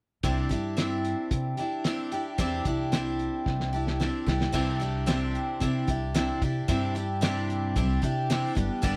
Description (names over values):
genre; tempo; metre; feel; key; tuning
folk rock and heartland rock; 112 BPM; 4/4; straight; C major; A4 = 439 Hz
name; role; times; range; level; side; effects
picked twelve-string acoustic guitar; accompaniment; 0.2-9.0 s; G2 to G4; -31 LUFS; equal; none
upright bass; bass; 0.2-9.0 s; G1 to C3; -32 LUFS; equal; none
cloth-damped thuddy drum kit; drums; 0.2-9.0 s; crash cymbal, hi-hat, kick drum, snare drum; -32 LUFS; equal; none
room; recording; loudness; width
little or no reverb; dry, close 1970s-style studio recording; -28 LUFS; mono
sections
0.2-4.5 A section; 4.5-9.0 B section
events
drum fill 3.5-4.5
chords
0.2 Cadd9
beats
| 0.24 0.78 1.32 1.86 | 2.39 2.93 3.47 4.00 | 4.54 5.08 5.61 6.15 | 6.69 7.22 7.76 8.30 | 8.84